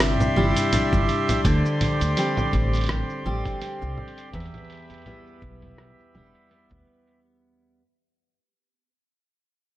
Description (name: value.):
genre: folktronica.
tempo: 83 BPM.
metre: 4/4.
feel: swing 56% on 16ths.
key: unclear.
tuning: A4 = 442 Hz.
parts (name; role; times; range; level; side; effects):
hand-pumped harmonium; sustained chords; 0.0-7.2 s; G4 to C6; -28 LUFS; equal; low-pass filter.
picked steel-string acoustic guitar; arpeggios; 0.0-7.8 s; E2 to G4; -26 LUFS; equal; low-pass filter, ping-pong delay.
upright bass; bass; 0.0-6.8 s; E1 to E2; -26 LUFS; equal; none.
lo-fi sampler-style drum kit; drums; 0.0-7.2 s; cabasa, congas, hi-hat, rim click; -27 LUFS; equal; low-pass filter on hats, studio reverb, low-pass filter on perc, low-pass filter on snare.
electronic kick drum; drums; 0.9-6.8 s; none; -26 LUFS; equal; studio reverb.
room: light reverb, studio reverb.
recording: none.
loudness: -20 LUFS.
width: side -14 dB against mid.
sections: 0.0-7.2 A section.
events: fade-out 0.0-7.2; filter sweep on drum 0.0-7.2; filter sweep on steel-string acoustic guitar 0.0-7.2; filter sweep on harmonium 0.0-7.2.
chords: 0.0 Cadd9; 1.4 Gsus4; 4.3 Em.